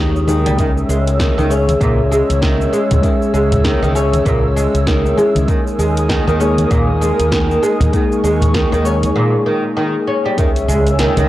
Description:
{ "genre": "organic downtempo", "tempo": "98 BPM", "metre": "4/4", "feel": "swing 59% on 16ths", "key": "unclear", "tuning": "A4 = 440 Hz", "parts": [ { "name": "muted felt-like synth keys", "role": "accompaniment", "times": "0.0-11.3 s", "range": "Ab3 to Fb5", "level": "-19 LUFS", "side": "left 1 dB", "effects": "chorus, sidechain pumping, analog delay" }, { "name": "airy breathy pad", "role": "sustained chords", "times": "0.0-11.3 s", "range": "Bb4 to Fb6", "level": "-23 LUFS", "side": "equal", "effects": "chorus, sidechain pumping" }, { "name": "oud", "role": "arpeggios", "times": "0.0-11.3 s", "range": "Bb2 to Db4", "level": "-18 LUFS", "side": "right 1 dB", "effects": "analog delay" }, { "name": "mellow fretless electric bass", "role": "bass", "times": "0.0-11.3 s", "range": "Db2 to Eb2", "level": "-17 LUFS", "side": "equal", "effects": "transformer saturation, sidechain pumping" }, { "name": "deep house drum kit", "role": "drums", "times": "0.2-11.3 s", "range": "cabasa, hi-hat, snare drum", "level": "-24 LUFS", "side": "equal", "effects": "overdrive" }, { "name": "congas", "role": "percussion", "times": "0.3-11.3 s", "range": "none", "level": "-20 LUFS", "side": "equal", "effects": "none" }, { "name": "electronic kick drum", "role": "drums", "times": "0.6-10.5 s", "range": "none", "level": "-19 LUFS", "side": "equal", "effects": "none" }, { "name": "impact", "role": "sound effects", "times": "10.4-11.3 s", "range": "none", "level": "-22 LUFS", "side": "equal", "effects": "none" } ], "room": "light reverb", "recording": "dry, gritty hardware recording", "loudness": "-12 LUFS", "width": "side -15 dB against mid", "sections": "0.0-10.4 A section", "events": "impact 10.4-11.3", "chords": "0.0 Ebsus4; 0.6 Dbm; 5.5 Ebsus4; 10.4 Dbm" }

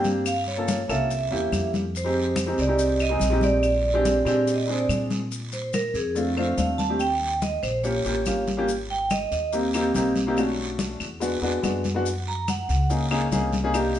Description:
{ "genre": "Afro-Cuban jazz", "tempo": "142 BPM", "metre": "4/4", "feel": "straight", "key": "unclear", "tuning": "A4 = 441 Hz", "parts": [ { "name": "vibraphone with medium hard mallets", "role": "melody", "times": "0.0-9.5, 12.3-12.9 s", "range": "Ab4 to Bb5", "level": "-26 LUFS", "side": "right 3 dB", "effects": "none" }, { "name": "warm baby grand piano", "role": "accompaniment", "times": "0.0-14.0 s", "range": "Ab3 to A4", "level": "-25 LUFS", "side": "equal", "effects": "none" }, { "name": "upright bass", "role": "bass", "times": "0.0-14.0 s", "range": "Ab1 to Bb2", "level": "-29 LUFS", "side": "equal", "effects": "none" }, { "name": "guiro", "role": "percussion", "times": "0.0-14.0 s", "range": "none", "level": "-38 LUFS", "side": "right 4 dB", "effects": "none" }, { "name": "maracas", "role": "percussion", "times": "0.0-14.0 s", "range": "none", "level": "-39 LUFS", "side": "left 6 dB", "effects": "none" }, { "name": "congas", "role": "percussion", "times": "0.1-14.0 s", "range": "none", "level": "-31 LUFS", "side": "left 2 dB", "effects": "none" }, { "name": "claves", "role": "percussion", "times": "0.3-14.0 s", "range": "none", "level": "-37 LUFS", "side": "left 4 dB", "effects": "none" } ], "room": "wet stone room reverb, RT60 0.9 s", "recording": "band playing live in one room, nothing above 10.3 kHz", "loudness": "-22 LUFS", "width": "side -11 dB against mid", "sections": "0.0-5.3 A section; 5.3-14.0 B section", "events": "vibraphone solo 5.3-14.0", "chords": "0.3 Gm7b5; 1.1 C7b9; 1.9 Fm7; 3.6 Bb13; 5.3 Bbmaj7; 7.0 Eb9; 8.7 Abmaj9; 10.4 Bm7; 11.2 E9; 12.1 Gb69" }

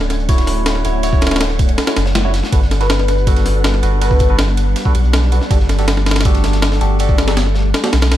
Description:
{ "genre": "drum and bass, jungle", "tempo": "161 BPM", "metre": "4/4", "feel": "straight", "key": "unclear", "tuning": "A4 = 440 Hz", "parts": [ { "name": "soft string machine", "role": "sustained chords", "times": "0.0-8.2 s", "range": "G3 to F#5", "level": "-23 LUFS", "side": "equal", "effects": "ensemble chorus, vintage 12-bit sampler grit" }, { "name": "soft dub sub bass", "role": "bass", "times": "0.0-8.2 s", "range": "D1 to B1", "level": "-16 LUFS", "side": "equal", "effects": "tube saturation" }, { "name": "breakbeat sampler-style drum kit", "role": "drums", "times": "0.0-8.2 s", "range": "hi-hat, kick drum, ride cymbal, snare drum", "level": "-16 LUFS", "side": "equal", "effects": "small room ambience" }, { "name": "crunchy breakbeat drum kit", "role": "drums", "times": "0.1-8.2 s", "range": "hi-hat, snare drum", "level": "-31 LUFS", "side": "left 3 dB", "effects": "high-pass filter on hats, small room ambience, high-pass filter on snare, high-pass filter on room" }, { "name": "barky tine electric piano", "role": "stabs", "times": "0.3-7.9 s", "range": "D4 to C#5", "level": "-23 LUFS", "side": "right 1 dB", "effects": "overdrive, phaser, dub echo" }, { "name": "breathy flute-like synth lead", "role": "melody", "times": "2.8-4.3 s", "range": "B4", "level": "-24 LUFS", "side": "left 2 dB", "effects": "analog chorus, cassette tape, dub echo" } ], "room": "little or no reverb", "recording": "dark, warm production", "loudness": "-12 LUFS", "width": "side -13 dB against mid", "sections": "0.0-8.2 A section", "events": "none", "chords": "0.0 Dmaj7; 2.5 Gmaj9" }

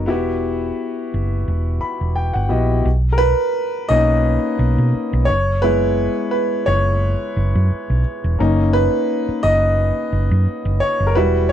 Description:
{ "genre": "lush 1970s-style soul", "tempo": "87 BPM", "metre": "4/4", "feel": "swing 54% on 16ths", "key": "B major", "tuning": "A4 = 440 Hz", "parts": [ { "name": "clear concert grand piano", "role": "accompaniment", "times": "0.0-11.5 s", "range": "G3 to B5", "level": "-18 LUFS", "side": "left 1 dB", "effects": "none" }, { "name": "hollow-body short-scale fingered electric bass", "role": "bass", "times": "0.0-11.5 s", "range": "E1 to B2", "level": "-18 LUFS", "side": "equal", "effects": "none" } ], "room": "little or no reverb", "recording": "dry, close 1970s-style studio recording", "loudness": "-16 LUFS", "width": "side -10 dB against mid", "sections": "0.0-2.9 A section; 2.9-11.5 B section", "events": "grand piano fill 1.5-2.9; grand piano solo 2.9-11.5", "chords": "0.1 Emadd9; 2.9 Bmaj9; 5.3 F#7sus4; 8.4 Bmaj9/F#" }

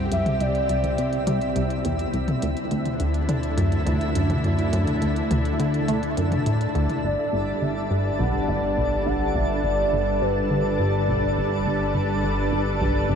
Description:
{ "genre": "ambient, sequencer-driven space music", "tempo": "104 BPM", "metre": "4/4", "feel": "straight", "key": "unclear", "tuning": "A4 = 440 Hz", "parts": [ { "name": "lush unison pad", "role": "sustained chords", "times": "0.0-13.2 s", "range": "C3 to A5", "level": "-27 LUFS", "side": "equal", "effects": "chorus" }, { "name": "plucky analog bass", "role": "riff", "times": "0.0-13.2 s", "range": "G1 to A3", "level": "-25 LUFS", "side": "equal", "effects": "wide subtle chorus, tape echo" }, { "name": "analog drone", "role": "bass", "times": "0.0-13.2 s", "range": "G1 to D2", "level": "-29 LUFS", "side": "equal", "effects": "chorus" }, { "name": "twinkling granular texture", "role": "texture", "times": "0.0-13.2 s", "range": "D4 to E5", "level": "-34 LUFS", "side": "left 1 dB", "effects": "built-in reverb" }, { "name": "expressive synth lead", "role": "melody", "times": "0.1-1.6, 7.0-11.4 s", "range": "B4 to F#5", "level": "-28 LUFS", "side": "equal", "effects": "chorus, tape echo" }, { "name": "minimal click drum kit", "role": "percussion", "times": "0.1-7.0 s", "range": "hi-hat, toms", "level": "-31 LUFS", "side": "left 1 dB", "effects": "tape echo" } ], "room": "wet huge ambient reverb, RT60 8.7 s", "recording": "dark, warm production", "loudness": "-21 LUFS", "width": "side -7 dB against mid", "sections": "0.0-7.0 A section; 7.0-13.2 B section", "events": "none", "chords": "0.0 C; 2.4 Dadd9; 7.0 G" }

